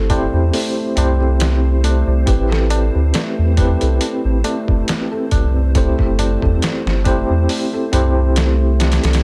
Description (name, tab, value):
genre	trip hop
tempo	69 BPM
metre	4/4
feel	swing 55% on 16ths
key	unclear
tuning	A4 = 441 Hz
part	tine electric piano	accompaniment	0.0-9.2 s	C4 to C5	-23 LUFS	equal	tremolo, vintage 12-bit sampler grit, tape echo
part	felt-muted upright piano	arpeggios	0.0-9.2 s	A3 to A4	-28 LUFS	equal	digital delay
part	round analog bass	bass	0.0-9.2 s	G1 to E2	-18 LUFS	equal	none
part	flickering grainy texture	texture	0.0-9.2 s	C4	-35 LUFS	equal	built-in reverb
part	trip hop sampler-style drum kit	drums	0.1-9.2 s	hi-hat, kick drum, snare drum	-22 LUFS	equal	small room ambience
part	tabla	percussion	0.1-9.2 s	none	-31 LUFS	equal	none
room	digital ambience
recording	none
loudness	-16 LUFS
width	mono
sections	0.0-9.2 A section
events	none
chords	0.0 C; 2.3 Am7; 5.8 C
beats	0.53 1.40 | 2.27 3.14 4.01 4.88 | 5.75 6.62 7.49 8.36 | 9.23